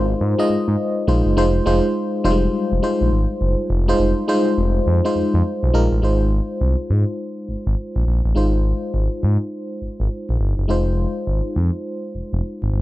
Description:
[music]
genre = R&B, new jack swing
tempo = 103 BPM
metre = 4/4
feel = swing 63% on 16ths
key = Ab major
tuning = A4 = 439 Hz
[part]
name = FM electric piano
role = accompaniment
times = 0.0-12.8 s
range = G3 to Eb5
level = -21 LUFS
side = left 1 dB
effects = chorus, tremolo
[part]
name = smooth gliding synth bass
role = bass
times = 0.0-12.8 s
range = F1 to Ab2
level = -18 LUFS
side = equal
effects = none
[sound]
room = little or no reverb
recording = dry, close 1970s-style studio recording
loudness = -17 LUFS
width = side -16 dB against mid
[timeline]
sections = 0.0-6.0 A section; 6.0-12.8 B section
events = none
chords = 0.0 Ab6; 1.4 Fm7; 6.0 Ab6; 10.7 Fm7

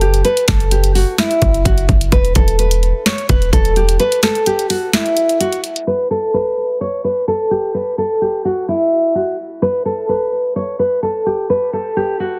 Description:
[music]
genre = hip hop, trap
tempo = 128 BPM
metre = 4/4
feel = half-time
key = unclear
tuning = A4 = 440 Hz
[part]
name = nylon-string guitar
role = melody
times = 0.0-12.4 s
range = E4 to C#5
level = -18 LUFS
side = equal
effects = low-pass filter, tape echo
[part]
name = warm 808-style bass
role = bass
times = 0.0-4.0 s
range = E1 to F#1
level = -17 LUFS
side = equal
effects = none
[part]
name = trap drum kit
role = drums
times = 0.0-5.9 s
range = hi-hat, kick drum, snare drum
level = -18 LUFS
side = equal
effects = none
[sound]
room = digital ambience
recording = dense, heavily limited modern master, low-pass filter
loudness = -16 LUFS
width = mono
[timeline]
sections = 0.0-5.9 A section; 5.9-12.4 B section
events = kick muted 4.0-5.9; filter sweep 5.9-12.4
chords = 0.0 N.C.; 2.1 E5; 5.9 N.C.

